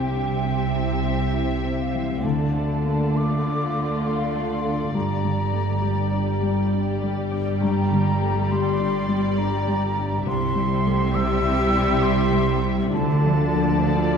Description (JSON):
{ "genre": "cinematic, emotional film score for orchestra", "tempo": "67 BPM", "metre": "3/4", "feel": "rubato", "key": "G dorian", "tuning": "A4 = 441 Hz", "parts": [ { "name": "muted symphonic violin section", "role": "melody", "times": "0.0-14.2 s", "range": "D5 to E5", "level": "-34 LUFS", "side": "left 3 dB", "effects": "none" }, { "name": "mellow silver concert flute", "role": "second line", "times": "0.0-14.2 s", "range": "F5 to E6", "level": "-29 LUFS", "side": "equal", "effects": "none" }, { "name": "muted studio violin section", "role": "second line", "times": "0.0-14.2 s", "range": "D4 to G4", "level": "-32 LUFS", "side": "left 6 dB", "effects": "none" }, { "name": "felt-muted upright piano", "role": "accompaniment", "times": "0.0-14.2 s", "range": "C2 to E4", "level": "-27 LUFS", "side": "left 2 dB", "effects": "none" }, { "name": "muted studio viola section", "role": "accompaniment", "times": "0.0-14.2 s", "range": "F3 to C4", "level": "-30 LUFS", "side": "equal", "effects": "none" }, { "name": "concert harp", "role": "arpeggios", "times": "0.0-14.2 s", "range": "G2 to G5", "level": "-29 LUFS", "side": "left 4 dB", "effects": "none" }, { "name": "muted chamber cello section", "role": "bass", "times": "0.0-14.2 s", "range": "G2 to D3", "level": "-28 LUFS", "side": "right 3 dB", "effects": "none" }, { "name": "muted studio double bass section", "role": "bass", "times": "0.0-14.2 s", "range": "G1 to D2", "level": "-26 LUFS", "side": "right 3 dB", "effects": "none" } ], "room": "wet scoring stage reverb, RT60 1.9 s", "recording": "heard from further back in the room", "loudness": "-20 LUFS", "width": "side -6 dB against mid", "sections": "0.0-14.2 A section", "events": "none", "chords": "0.0 C; 2.2 Dm; 4.9 Gm; 10.3 C; 12.9 Dm", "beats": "0.44 1.34 | 2.24 3.16 4.06 | 4.95 5.83 6.72 | 7.61 8.50 9.38 | 10.26 11.14 12.03 | 12.92 13.82" }